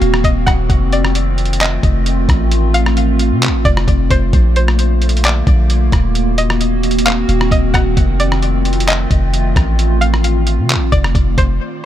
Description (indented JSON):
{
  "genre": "hip hop, atmospheric cloud-rap",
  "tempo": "132 BPM",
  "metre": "4/4",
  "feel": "half-time",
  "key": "unclear",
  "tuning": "A4 = 443 Hz",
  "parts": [
    { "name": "string-like resonator pluck", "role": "melody", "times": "0.0-11.6 s", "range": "C5 to Gb5", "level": "-22 LUFS", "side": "left 1 dB", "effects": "chorus, ping-pong delay" },
    { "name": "warbly tape-like pad", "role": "sustained chords", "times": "0.0-11.8 s", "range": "D3 to Gb4", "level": "-18 LUFS", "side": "equal", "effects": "chorus, built-in reverb, phaser, sidechain pumping" },
    { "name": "long sustained 808-style bass", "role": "bass", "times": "0.0-11.6 s", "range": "Eb1 to C3", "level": "-14 LUFS", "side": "equal", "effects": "none" },
    { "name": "lo-fi sampler-style drum kit", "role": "drums", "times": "0.0-11.5 s", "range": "handclaps, hi-hat, kick drum, rim click", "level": "-16 LUFS", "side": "equal", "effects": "overdrive" }
  ],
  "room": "little or no reverb",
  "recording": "none",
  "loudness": "-11 LUFS",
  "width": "side -12 dB against mid",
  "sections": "0.0-11.6 A section",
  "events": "none",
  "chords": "0.0 Ebm6; 0.7 F7; 4.3 Bbmaj7; 6.2 Ebm6; 8.0 F7"
}